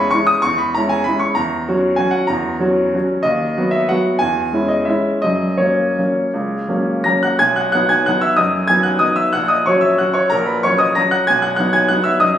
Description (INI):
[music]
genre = classical, piano waltz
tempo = 158-200 BPM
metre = 3/4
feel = rubato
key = B major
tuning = A4 = 440 Hz
[part]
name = clear concert grand piano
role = solo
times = 0.0-12.4 s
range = A#1 to A#6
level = -14 LUFS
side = equal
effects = none
[sound]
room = moderate recital hall reverb, RT60 1.4 s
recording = recorded on a phone in the room, studio reverb, compression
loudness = -14 LUFS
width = side -10 dB against mid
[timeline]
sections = 0.0-7.4 A section; 7.4-12.4 B section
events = none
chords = 0.0 C#m/E; 1.4 F#7/E; 3.3 B/D#; 4.2 C#m/E; 5.2 F#; 7.4 B; 9.3 F#/A#; 11.3 B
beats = 0.13 | 0.44 0.75 1.06 | 1.37 1.68 1.99 | 2.30 2.61 2.94 | 3.25 3.56 3.88 | 4.20 4.52 4.87 | 5.23 5.60 5.98 | 6.34 6.69 7.05 | 7.41 7.74 8.07 | 8.39 8.71 9.03 | 9.35 9.67 9.99 | 10.31 10.63 10.96 | 11.28 11.59 11.89 | 12.20